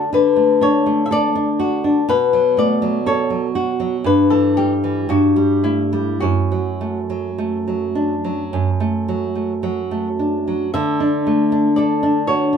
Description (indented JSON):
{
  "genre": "romantic duo for nylon-string guitar and classical guitar",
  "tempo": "51-62 BPM",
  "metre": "4/4",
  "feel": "rubato",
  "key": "D major",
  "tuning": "A4 = 443 Hz",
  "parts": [
    { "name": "flamenco guitar", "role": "melody", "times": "0.0-12.6 s", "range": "E4 to E5", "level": "-20 LUFS", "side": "left 4 dB", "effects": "none" },
    { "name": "nylon-string guitar", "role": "accompaniment", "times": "0.0-12.6 s", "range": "F#2 to A4", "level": "-17 LUFS", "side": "right 1 dB", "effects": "none" }
  ],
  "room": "moderate small room ambience, RT60 0.5 s",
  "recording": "band playing live in one room",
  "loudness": "-16 LUFS",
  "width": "side -7 dB against mid",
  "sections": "0.0-10.7 A section; 10.7-12.6 B section",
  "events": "none",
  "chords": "0.0 D; 2.1 B5; 4.1 Em/G; 5.1 A5/G; 6.2 D/F#; 10.7 D",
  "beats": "0.14 1.12 | 2.10 3.08 4.07 5.11 | 6.23 7.39 8.53 9.62 | 10.73 11.77"
}